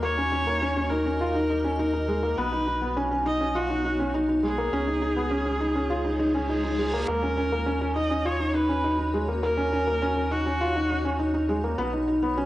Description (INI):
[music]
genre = piano and strings electronica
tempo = 102 BPM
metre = 4/4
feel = straight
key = Eb minor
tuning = A4 = 440 Hz
[part]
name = rich viola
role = melody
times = 0.0-11.5 s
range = F#4 to D#5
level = -29 LUFS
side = equal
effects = cassette tape
[part]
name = granular cloud pad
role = sustained chords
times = 0.0-12.5 s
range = Ab3 to Eb5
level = -34 LUFS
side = equal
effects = built-in reverb, cassette tape
[part]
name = felt-muted upright piano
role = riff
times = 0.0-12.5 s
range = Ab3 to F4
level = -26 LUFS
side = equal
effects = cassette tape
[part]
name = warm sub bass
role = bass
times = 0.0-12.5 s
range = B1 to Eb2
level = -31 LUFS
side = equal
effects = none
[part]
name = reverse cymbal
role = sound effects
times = 6.2-7.1 s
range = none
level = -38 LUFS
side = right 1 dB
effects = none
[sound]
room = wet spring reverb, RT60 1.2 s, studio reverb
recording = home recording on cassette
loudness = -23 LUFS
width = side -16 dB against mid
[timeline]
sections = 0.0-12.5 A section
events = reverse cymbal 6.2-7.1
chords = 0.0 Ebm7; 2.4 Badd9; 4.7 Dbadd9; 7.1 Ebm7; 11.8 Badd9